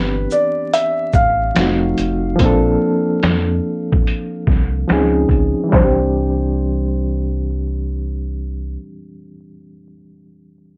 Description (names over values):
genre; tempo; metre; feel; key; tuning
lo-fi hip hop; 72 BPM; 4/4; swing 63% on 16ths; C major; A4 = 440 Hz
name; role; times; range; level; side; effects
felt-muted upright piano; melody; 0.0-8.8 s; B4 to F5; -22 LUFS; equal; low-pass filter, analog delay
reed electric piano; accompaniment; 0.0-10.8 s; E3 to A4; -22 LUFS; equal; fast tremolo, cassette tape, low-pass filter
deep dub fingered electric bass; bass; 0.0-8.8 s; F1 to F2; -23 LUFS; equal; none
trip hop sampler-style drum kit; drums; 0.3-6.0 s; finger snaps, handclaps, hi-hat, kick drum, shaker, snare drum; -19 LUFS; equal; none
room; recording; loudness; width
moderate small room reverb, RT60 0.5 s; vinyl crackle, low-pass filter; -17 LUFS; mono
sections
0.0-5.7 A section; 5.7-9.1 B section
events
filter sweep 0.0-5.7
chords
0.0 Cmaj9; 1.6 F7b9; 2.4 Bbmaj9; 4.9 Dbmaj9; 5.7 Cadd9